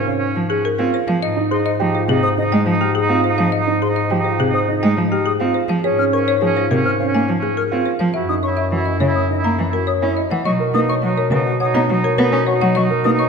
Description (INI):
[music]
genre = classical, minimalist pattern music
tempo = 104 BPM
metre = 4/4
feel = straight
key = unclear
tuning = A4 = 438 Hz
[part]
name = warm oboe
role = second line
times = 0.0-13.3 s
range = Db4 to Fb4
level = -24 LUFS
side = right 4 dB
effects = none
[part]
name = dark baby grand piano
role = arpeggios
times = 0.0-13.3 s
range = Db4 to Db5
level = -22 LUFS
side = right 6 dB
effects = none
[part]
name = mellow bass clarinet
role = bass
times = 0.0-13.3 s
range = Gb2 to B2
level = -23 LUFS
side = left 4 dB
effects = none
[part]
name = concert flute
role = arpeggios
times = 0.1-13.2 s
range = Eb5 to F6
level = -27 LUFS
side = left 4 dB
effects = none
[part]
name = rich cello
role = accompaniment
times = 0.4-13.2 s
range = C3 to C#4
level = -21 LUFS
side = right 1 dB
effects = none
[part]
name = folk marimba with hard mallets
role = melody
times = 0.5-13.3 s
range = G4 to Bb5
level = -23 LUFS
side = left 7 dB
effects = none
[sound]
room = wet scoring stage reverb, RT60 1.5 s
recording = none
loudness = -15 LUFS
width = side -5 dB against mid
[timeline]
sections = 0.0-10.5 A section; 10.5-13.3 B section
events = none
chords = 0.0 Bbm7/Ab (rootless); 1.2 Fm7/Ab; 5.8 Bbm7/Ab; 8.1 Gb7(no3); 10.5 Bmaj7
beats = 0.07 0.65 | 1.23 1.80 2.38 2.96 | 3.53 4.11 4.69 5.26 | 5.84 6.42 6.99 7.57 | 8.15 8.72 9.30 9.88 | 10.46 11.03 11.61 12.19 | 12.76